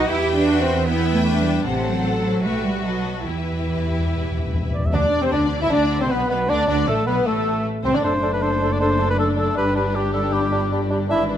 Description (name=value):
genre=classical, dramatic, fast romantic movement for symphony orchestra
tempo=154 BPM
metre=4/4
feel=rubato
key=E minor, G major from 4.9 s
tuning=A4 = 440 Hz
part: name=warm symphonic violin section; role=melody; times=0.0-11.4 s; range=G4 to G5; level=-32 LUFS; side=left 5 dB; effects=none
part: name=bright symphonic violin section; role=second line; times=0.0-11.4 s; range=A3 to E5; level=-30 LUFS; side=left 3 dB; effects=none
part: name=rich symphonic viola section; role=accompaniment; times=0.0-11.4 s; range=A3 to A4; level=-27 LUFS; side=equal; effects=none
part: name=dark symphonic double bass section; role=bass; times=0.0-11.4 s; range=F#1 to E2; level=-25 LUFS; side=right 2 dB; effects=none
part: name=rich symphonic cello section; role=bass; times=0.0-11.4 s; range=F#2 to E4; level=-25 LUFS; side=right 2 dB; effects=none
part: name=timpani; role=percussion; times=3.3-4.9 s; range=E2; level=-26 LUFS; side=left 1 dB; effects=none
part: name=warm oboe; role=second line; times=4.7-11.2 s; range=G4 to E5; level=-24 LUFS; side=equal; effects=none
part: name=flute section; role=second line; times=4.9-11.3 s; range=A4 to B5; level=-30 LUFS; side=left 2 dB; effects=none
part: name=warm clarinet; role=second line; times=4.9-11.2 s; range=A3 to A4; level=-29 LUFS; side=left 2 dB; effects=none
part: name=warm bassoon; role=accompaniment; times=4.9-11.2 s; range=A3 to E4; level=-28 LUFS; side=right 1 dB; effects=none
part: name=warm French horn section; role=sustained chords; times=4.9-11.4 s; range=E3 to E4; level=-26 LUFS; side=left 4 dB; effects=none
room=moderate concert hall reverb, RT60 1.9 s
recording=none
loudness=-18 LUFS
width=side -10 dB against mid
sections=0.0-4.9 A section; 4.9-11.4 B section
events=timpani fill 3.3-4.9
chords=0.1 Em; 1.7 F#dim/A; 2.5 Em/B; 2.9 B7; 3.3 Em; 4.9 Cmaj9; 6.5 D5; 8.0 D/F#; 9.6 G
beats=| 0.10 0.49 0.89 1.28 | 1.67 2.06 2.46 2.86 | 3.27 3.69 4.11 4.53 | 4.94 5.33 5.72 6.11 | 6.50 6.88 7.27 7.65 | 8.04 8.42 8.81 9.19 | 9.58 9.96 10.34 10.73 | 11.11